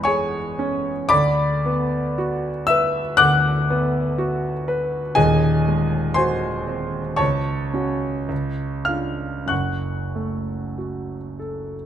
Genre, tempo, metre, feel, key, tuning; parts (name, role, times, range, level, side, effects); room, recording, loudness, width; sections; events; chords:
classical, romantic nocturne for solo piano; 47-61 BPM; 4/4; rubato; F# minor; A4 = 440 Hz
clear concert grand piano; solo; 0.0-11.9 s; D#1 to F#6; -19 LUFS; equal
moderate recital hall reverb, RT60 1.4 s; close, detailed microphones; -19 LUFS; side -10 dB against mid
0.0-11.9 A section
0.0 C#m/E; 1.1 Bm/D; 5.2 G#7/D#; 7.2 F#m/C#; 8.3 C#; 9.5 F#m